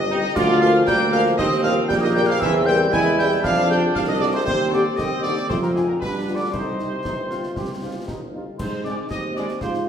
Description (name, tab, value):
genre	military-style march for wind band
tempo	117 BPM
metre	2/4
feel	straight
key	C minor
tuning	A4 = 440 Hz
part	mellow trumpet section	melody	0.0-9.7 s	Ab4 to Ab5	-26 LUFS	equal	none
part	mellow hollow piccolo	second line	0.0-9.9 s	Ab5 to Ab6	-29 LUFS	left 2 dB	none
part	warm euphonium	second line	0.0-9.9 s	Ab2 to F4	-26 LUFS	right 2 dB	none
part	mellow tuba	bass	0.0-9.9 s	G1 to Ab2	-23 LUFS	right 2 dB	none
part	dark French horn section	accompaniment	0.1-9.4 s	F3 to Bb4	-28 LUFS	left 4 dB	none
part	clear trombone section	sustained chords	0.1-9.5 s	Eb3 to G4	-25 LUFS	equal	none
part	clash cymbals, concert bass drum and concert snare drum	drums	0.4-9.9 s	none	-32 LUFS	left 1 dB	none
room	wet recital hall reverb, RT60 1.4 s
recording	recorded in a church or concert hall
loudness	-18 LUFS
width	side -8 dB against mid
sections	0.0-8.6 A section; 8.6-9.9 A section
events	none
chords	0.4 Bb7/D; 1.4 Eb; 2.4 C7/E; 3.4 Fm; 4.5 Cm/Eb; 5.5 Dm7b5/F; 6.0 G7; 6.5 Cm; 8.6 Ab